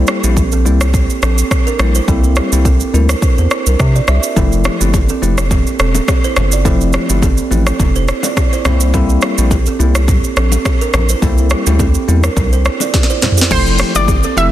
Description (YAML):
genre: afrobeats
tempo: 105 BPM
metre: 4/4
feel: swing 55% on 16ths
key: F major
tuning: A4 = 442 Hz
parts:
  - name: bell-like tine electric piano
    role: accompaniment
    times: 0.0-14.5 s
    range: F3 to E4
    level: -19 LUFS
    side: left 5 dB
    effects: none
  - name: round analog bass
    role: bass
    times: 0.0-14.5 s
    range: E1 to C3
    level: -13 LUFS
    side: equal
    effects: none
  - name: kalimba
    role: riff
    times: 0.1-14.5 s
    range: Bb3 to E5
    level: -20 LUFS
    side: right 7 dB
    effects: digital delay
  - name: afro-pop drum kit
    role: drums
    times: 0.1-14.5 s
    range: crash cymbal, hi-hat, kick drum, rim click, shaker, snare drum, toms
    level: -15 LUFS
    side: equal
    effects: none
  - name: congas and bongos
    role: percussion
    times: 4.4-14.2 s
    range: none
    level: -24 LUFS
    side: left 5 dB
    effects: none
  - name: analog pluck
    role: melody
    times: 13.5-14.5 s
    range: C5 to E5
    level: -15 LUFS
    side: equal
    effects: chorus, digital delay
room: light reverb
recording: dense, heavily limited modern master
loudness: -11 LUFS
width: side -13 dB against mid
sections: 0.0-13.5 A section; 13.5-14.5 B section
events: drum fill 12.9-13.5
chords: 0.0 C7; 4.4 Fmaj7; 8.7 C7; 13.5 Fmaj7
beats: 0.37 0.94 1.51 | 2.08 2.65 3.22 3.79 | 4.37 4.94 5.51 6.08 | 6.65 7.22 7.79 8.37 | 8.94 9.51 10.08 10.65 | 11.22 11.79 12.37 12.94 | 13.51 14.08